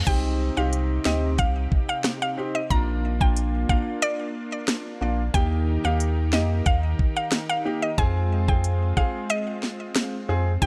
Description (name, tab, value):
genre	dancehall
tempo	91 BPM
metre	4/4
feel	straight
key	C minor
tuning	A4 = 445 Hz
part	lush unison pad	sustained chords	0.0-10.7 s	C3 to Bb4	-36 LUFS	equal	chorus, sidechain pumping
part	warm sub bass	bass	0.0-10.7 s	Bb1 to F2	-26 LUFS	equal	none
part	mallet-like synth pluck	melody	0.1-10.7 s	D5 to Bb5	-30 LUFS	equal	chorus, delay
part	warm concert grand piano	accompaniment	0.1-10.7 s	Bb3 to Ab4	-31 LUFS	equal	none
part	island pop drum kit	drums	0.1-10.7 s	crash cymbal, hi-hat, kick drum, rim click, snare drum	-26 LUFS	equal	none
room	little or no reverb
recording	none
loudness	-24 LUFS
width	mono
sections	0.1-10.7 A section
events	none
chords	0.1 Cm; 2.7 Bb; 5.3 Eb; 8.0 Fm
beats	| 0.07 0.73 1.39 2.05 | 2.71 3.37 4.02 4.68 | 5.34 6.00 6.66 7.32 | 7.98 8.64 9.30 9.96 | 10.62